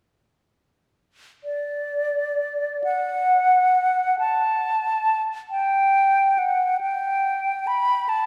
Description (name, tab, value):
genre	classical, free, expressive piece for unaccompanied flute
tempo	42-48 BPM (dotted quarters)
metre	6/8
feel	rubato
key	D major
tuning	A4 = 439 Hz
part	concert flute	solo	1.4-8.3 s	D5 to B5	-22 LUFS	equal	none
room	wet concert hall reverb, RT60 2.2 s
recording	recorded in a church or concert hall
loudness	-22 LUFS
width	mono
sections	1.4-8.3 A section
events	none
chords	none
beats	| 1.43 2.84 | 4.19 5.50 | 6.80 8.09